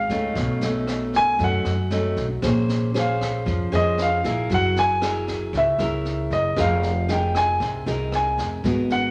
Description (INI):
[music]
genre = bossa nova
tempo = 116 BPM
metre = 4/4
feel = straight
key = unclear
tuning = A4 = 440 Hz
[part]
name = warm baby grand piano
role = melody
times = 0.0-9.1 s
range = Eb5 to Ab5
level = -25 LUFS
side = equal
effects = none
[part]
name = nylon-string guitar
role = accompaniment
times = 0.0-9.1 s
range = Ab2 to C5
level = -27 LUFS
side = equal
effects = none
[part]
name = upright bass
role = bass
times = 0.0-9.1 s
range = F1 to F#2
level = -29 LUFS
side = equal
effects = none
[part]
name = jazz brush drum kit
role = drums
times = 0.1-9.0 s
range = kick drum, rim click, snare drum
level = -35 LUFS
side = equal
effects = none
[sound]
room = moderate large studio reverb, RT60 1.2 s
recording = none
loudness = -22 LUFS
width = mono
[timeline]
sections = 0.0-9.1 A section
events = grand piano solo 0.0-9.1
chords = 0.4 B9; 2.4 Bbm9; 4.5 Gb9; 6.6 Fm7